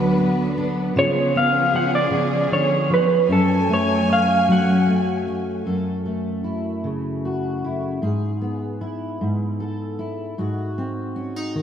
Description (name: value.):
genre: acoustic folk-pop ballad.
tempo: 51 BPM (dotted quarters).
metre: 6/8.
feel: straight.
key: F# harmonic minor, F# minor from 5.7 s.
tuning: A4 = 440 Hz.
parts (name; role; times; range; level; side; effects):
electric guitar through a small old amp; melody; 0.0-5.3 s; A4 to F#5; -20 LUFS; right 1 dB; tremolo, analog delay.
fingerpicked steel-string acoustic guitar; accompaniment; 0.0-11.6 s; F#2 to A4; -22 LUFS; left 1 dB; lush chorus.
warm studio string section; sustained chords; 0.0-5.6 s; D2 to G#5; -25 LUFS; right 1 dB; none.
room: wet lush hall reverb, RT60 2.8 s.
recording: dreamy mix soaked in reverb.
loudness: -19 LUFS.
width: side -8 dB against mid.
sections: 0.0-5.7 A section; 5.7-11.6 B section.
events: none.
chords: 0.0 Bm/D; 1.0 C#7; 3.3 F#madd9; 5.7 F#m7; 8.0 E/G#; 10.4 G#7.